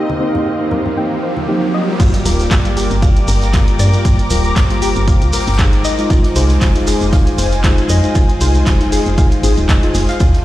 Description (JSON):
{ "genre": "deep house", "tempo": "117 BPM", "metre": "4/4", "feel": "swing 55% on 16ths", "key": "G minor", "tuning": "A4 = 440 Hz", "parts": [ { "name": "airy breathy pad", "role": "sustained chords", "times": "0.0-10.4 s", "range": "Eb4 to A5", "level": "-25 LUFS", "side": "equal", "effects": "chorus, sidechain pumping" }, { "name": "soft round pluck", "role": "arpeggios", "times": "0.0-10.3 s", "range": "F4 to G5", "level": "-24 LUFS", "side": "left 4 dB", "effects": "chorus, vintage 12-bit sampler grit, sidechain pumping, tape echo" }, { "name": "mellow FM electric piano", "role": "stabs", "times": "0.0-10.1 s", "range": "G3 to F4", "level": "-20 LUFS", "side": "equal", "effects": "chorus, sidechain pumping, analog delay" }, { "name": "riser", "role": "sound effects", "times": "0.0-2.0 s", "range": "none", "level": "-23 LUFS", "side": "right 4 dB", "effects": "none" }, { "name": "muted studio string section", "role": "texture", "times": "0.0-10.4 s", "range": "C4 to D6", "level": "-24 LUFS", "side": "equal", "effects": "sidechain pumping" }, { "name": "congas", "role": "percussion", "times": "0.1-1.5 s", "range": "none", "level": "-25 LUFS", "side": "left 1 dB", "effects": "none" }, { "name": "woody FM bass", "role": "bass", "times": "2.0-10.3 s", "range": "D1 to G2", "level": "-16 LUFS", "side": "equal", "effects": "sidechain pumping" }, { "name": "electronic kick drum", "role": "drums", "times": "2.0-10.3 s", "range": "none", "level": "-13 LUFS", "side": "equal", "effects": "none" }, { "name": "jazz brush drum kit", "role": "drums", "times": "2.0-10.4 s", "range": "hi-hat, ride cymbal, snare drum", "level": "-31 LUFS", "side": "left 1 dB", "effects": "sidechain pumping on cymbals, high-pass filter on cymbals, sidechain pumping on hats, high-pass filter on hats, high-pass filter on snare, high-pass filter on room" }, { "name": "punchy analog drum machine", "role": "drums", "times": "2.0-10.4 s", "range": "crash cymbal, handclaps, hi-hat", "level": "-25 LUFS", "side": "equal", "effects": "low-pass filter on hats, low-pass filter on cymbals, low-pass filter on snare" }, { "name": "shekere", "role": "percussion", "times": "2.0-10.4 s", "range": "none", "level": "-27 LUFS", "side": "right 3 dB", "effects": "none" } ], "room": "light reverb, small room ambience", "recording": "played on a big sound system in a bare room, stone room reverb", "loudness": "-11 LUFS", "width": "side -15 dB against mid", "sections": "0.0-2.0 A section; 2.0-10.4 B section", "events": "riser 0.0-2.0; drop 2.0-10.4", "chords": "0.0 Cm7; 2.0 Gm7; 5.8 Fm7" }